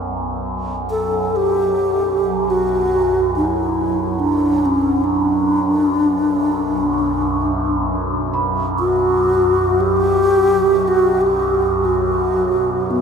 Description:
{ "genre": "world meditative, free-time meditation music", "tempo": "free time", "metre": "none", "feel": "none", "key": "B minor", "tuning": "A4 = 439 Hz", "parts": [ { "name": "overtone-sweeping drone", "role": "drone", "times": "0.0-13.0 s", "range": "B1 to F#2", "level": "-21 LUFS", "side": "right 1 dB", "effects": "chorus, built-in reverb, phaser" }, { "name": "breathy bass flute", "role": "melody", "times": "0.9-13.0 s", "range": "B3 to A4", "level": "-16 LUFS", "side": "equal", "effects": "ping-pong delay" }, { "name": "celesta", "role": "texture", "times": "8.3-13.0 s", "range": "B5", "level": "-29 LUFS", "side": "right 4 dB", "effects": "none" } ], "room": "wet cathedral reverb, RT60 5.8 s", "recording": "in a vast, echoing space", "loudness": "-15 LUFS", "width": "side -6 dB against mid", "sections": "0.0-13.0 A section", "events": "none", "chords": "none", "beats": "free time" }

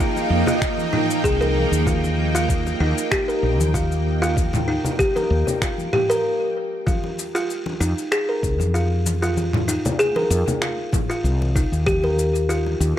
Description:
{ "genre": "organic downtempo", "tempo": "96 BPM", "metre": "4/4", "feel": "swing 54% on 16ths", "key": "unclear", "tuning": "A4 = 439 Hz", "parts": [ { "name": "bowed-like drone", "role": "sustained chords", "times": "0.0-6.2 s", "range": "F3 to G5", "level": "-25 LUFS", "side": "right 2 dB", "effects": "built-in reverb, phaser, sidechain pumping" }, { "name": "buzzing kalimba", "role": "arpeggios", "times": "0.0-12.7 s", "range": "Eb4 to Bb4", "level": "-22 LUFS", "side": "equal", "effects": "tape echo" }, { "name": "dusty soul sampler-style drum kit", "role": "drums", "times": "0.0-12.9 s", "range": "finger snaps, shaker, toms", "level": "-28 LUFS", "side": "left 1 dB", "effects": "overdrive" }, { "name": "quartz singing bowl", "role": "texture", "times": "0.0-6.2 s", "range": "none", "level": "barely audible", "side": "none", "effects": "none" }, { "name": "congas", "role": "percussion", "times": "0.2-12.8 s", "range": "none", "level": "-30 LUFS", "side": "left 2 dB", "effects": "none" }, { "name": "woody fretless electric bass", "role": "bass", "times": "0.3-12.9 s", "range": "Bb1 to F2", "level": "-21 LUFS", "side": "equal", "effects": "sidechain pumping" }, { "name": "electronic kick drum", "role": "drums", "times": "0.6-12.0 s", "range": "none", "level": "-24 LUFS", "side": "equal", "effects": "overdrive" } ], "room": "light reverb, digital ambience", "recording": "none", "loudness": "-18 LUFS", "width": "side -11 dB against mid", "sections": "0.0-6.9 A section; 6.9-13.0 B section", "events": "stop 6.2-6.9", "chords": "0.0 F7(no3); 1.9 Ebadd9; 6.9 F7(no3); 11.9 Ebadd9", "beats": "0.62 1.24 | 1.87 2.49 3.12 3.74 | 4.37 4.99 5.62 6.24 | 6.87 7.49 8.12 8.74 | 9.37 9.99 10.62 11.24 | 11.87 12.49" }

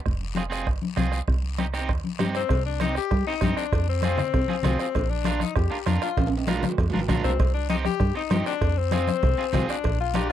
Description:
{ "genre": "latin, cumbia", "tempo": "196 BPM", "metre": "4/4", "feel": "straight", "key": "C minor", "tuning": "A4 = 442 Hz", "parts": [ { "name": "plucky analog bass", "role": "bass", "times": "0.1-10.3 s", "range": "F1 to G2", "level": "-26 LUFS", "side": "right 1 dB", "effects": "none" }, { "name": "bombo", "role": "percussion", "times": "0.1-10.3 s", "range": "none", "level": "-28 LUFS", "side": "right 2 dB", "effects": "none" }, { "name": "congas", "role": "percussion", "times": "0.1-10.3 s", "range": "none", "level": "-29 LUFS", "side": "left 5 dB", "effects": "none" }, { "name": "guiro", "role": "percussion", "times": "0.1-10.3 s", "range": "none", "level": "-42 LUFS", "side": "left 17 dB", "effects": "none" }, { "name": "electric guitar at the edge of break-up", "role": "accompaniment", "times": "0.4-10.3 s", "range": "C4 to Bb4", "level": "-30 LUFS", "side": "right 5 dB", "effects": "vibrato effect" }, { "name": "clear tenor saxophone", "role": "second line", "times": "2.4-10.3 s", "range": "C4 to G4", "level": "-28 LUFS", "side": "left 12 dB", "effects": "none" }, { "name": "cowbell and timbales", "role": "percussion", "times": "2.5-10.3 s", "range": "none", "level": "-33 LUFS", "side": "right 6 dB", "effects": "none" } ], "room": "light reverb", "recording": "dry, close 1970s-style studio recording", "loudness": "-22 LUFS", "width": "side -11 dB against mid", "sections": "0.0-2.5 A section; 2.5-10.3 B section", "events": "tenor saxophone solo 2.5-10.3; drum fill 6.2-7.4", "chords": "0.1 Fm; 1.3 Cm; 3.7 Fm; 5.0 Bb; 7.4 Cm; 8.6 Fm", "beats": "| 0.06 0.37 0.67 0.98 | 1.28 1.59 1.90 2.20 | 2.51 2.81 3.12 3.42 | 3.73 4.04 4.34 4.65 | 4.95 5.26 5.56 5.87 | 6.17 6.48 6.79 7.09 | 7.40 7.70 8.01 8.31 | 8.62 8.92 9.23 9.54 | 9.84 10.15" }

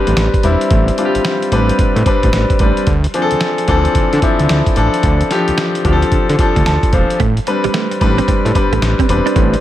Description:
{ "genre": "R&B, new jack swing", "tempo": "111 BPM", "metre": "4/4", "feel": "swing 64% on 16ths", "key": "A minor", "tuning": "A4 = 440 Hz", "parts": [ { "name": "clear grand piano", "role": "accompaniment", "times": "0.0-9.6 s", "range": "E3 to A5", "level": "-15 LUFS", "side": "left 2 dB", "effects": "none" }, { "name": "fat analog bass", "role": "bass", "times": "0.1-9.6 s", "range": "E1 to D3", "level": "-15 LUFS", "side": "equal", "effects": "none" }, { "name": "dusty soul sampler-style drum kit", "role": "drums", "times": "0.1-9.6 s", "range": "hi-hat, kick drum, snare drum", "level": "-17 LUFS", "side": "equal", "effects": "none" }, { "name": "direct-recorded clean electric guitar", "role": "riff", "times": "7.2-9.6 s", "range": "G3 to D4", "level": "-21 LUFS", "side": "right 11 dB", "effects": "ensemble chorus" } ], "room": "light reverb", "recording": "none", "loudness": "-11 LUFS", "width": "side -13 dB against mid", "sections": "0.0-9.6 A section", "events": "grand piano fill 6.4-7.2", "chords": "0.0 Am11; 2.9 Dm7; 7.2 Am11", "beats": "0.17 | 0.71 1.25 1.79 2.33 | 2.87 3.41 3.95 4.49 | 5.03 5.57 6.11 6.65 | 7.20 7.74 8.28 8.82 | 9.36" }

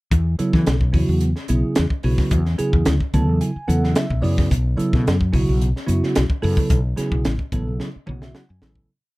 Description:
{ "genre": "electric jazz fusion", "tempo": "109 BPM", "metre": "4/4", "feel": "straight", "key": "E mixolydian", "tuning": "A4 = 439 Hz", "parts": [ { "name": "woody fretless electric bass", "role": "bass", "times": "0.1-8.9 s", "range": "A1 to E3", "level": "-20 LUFS", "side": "equal", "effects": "none" }, { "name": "crisp fusion drum kit", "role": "drums", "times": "0.1-8.9 s", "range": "hi-hat, kick drum, snare drum, toms", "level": "-22 LUFS", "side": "equal", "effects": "none" }, { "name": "bell-like tine electric piano", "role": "accompaniment", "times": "0.4-8.9 s", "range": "C#3 to A5", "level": "-22 LUFS", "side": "right 2 dB", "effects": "phaser" } ], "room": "little or no reverb", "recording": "none", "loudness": "-17 LUFS", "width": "side -20 dB against mid", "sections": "0.1-8.9 groove", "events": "tine electric piano fill 2.9-4.5, 7.8-8.9; fade-out 6.7-8.9; drum fill 7.8-8.9", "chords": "0.1 E9sus4; 4.5 B9sus4", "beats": "| 0.12 0.67 1.21 1.76 | 2.31 2.86 3.41 3.96 | 4.50 5.05 5.60 6.15 | 6.70 7.24 7.79 8.34" }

